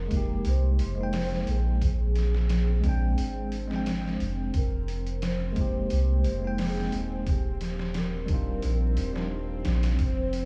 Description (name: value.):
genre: trip hop.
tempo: 88 BPM.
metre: 4/4.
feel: swing 54% on 16ths.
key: unclear.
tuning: A4 = 441 Hz.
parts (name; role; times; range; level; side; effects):
pure breathy sine lead; melody; 0.0-10.5 s; G4 to C5; -40 LUFS; equal; phaser, analog chorus, cassette tape, tape echo.
soft dub sub bass; bass; 0.0-10.5 s; Eb1 to C2; -30 LUFS; equal; none.
bowed-like drone; texture; 2.0-10.5 s; C4; -44 LUFS; equal; built-in reverb.
bell-like tine electric piano; accompaniment; 0.1-10.0 s; G3 to G5; -36 LUFS; equal; harmonic tremolo, tape echo.
trip hop sampler-style drum kit; drums; 0.1-10.5 s; hi-hat, kick drum, snare drum; -33 LUFS; equal; none.
room: light reverb.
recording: vinyl crackle, small room ambience.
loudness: -27 LUFS.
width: mono.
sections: 0.0-10.5 A section.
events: none.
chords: 0.0 Fm11; 1.8 Bb13; 4.5 Fm11; 7.3 Ebmaj9.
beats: 0.45 1.13 | 1.81 2.50 3.18 3.86 | 4.54 5.22 5.90 6.59 | 7.27 7.95 8.63 9.31 | 9.99.